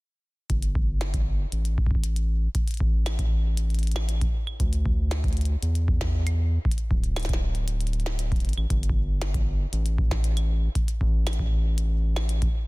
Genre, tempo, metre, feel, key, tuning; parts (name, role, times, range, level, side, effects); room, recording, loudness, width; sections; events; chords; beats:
IDM; 117 BPM; 4/4; straight; A4 = 440 Hz
round analog bass; bass; 0.5-12.5 s; D1 to E2; -25 LUFS; equal
electronic kick drum; drums; 0.5-12.5 s; -25 LUFS; equal
glitchy drum kit; drums; 0.5-12.5 s; claves, hi-hat, snare drum; -35 LUFS; equal; soft clipping on snare, tape echo
digital ambience; dense, heavily limited modern master; -23 LUFS; side -23 dB against mid
0.5-12.7 A section
| 0.50 1.01 1.52 2.04 | 2.55 3.06 3.57 4.09 | 4.60 5.11 5.62 6.14 | 6.65 7.16 7.68 8.19 | 8.70 9.21 9.73 10.24 | 10.75 11.27 11.78 12.29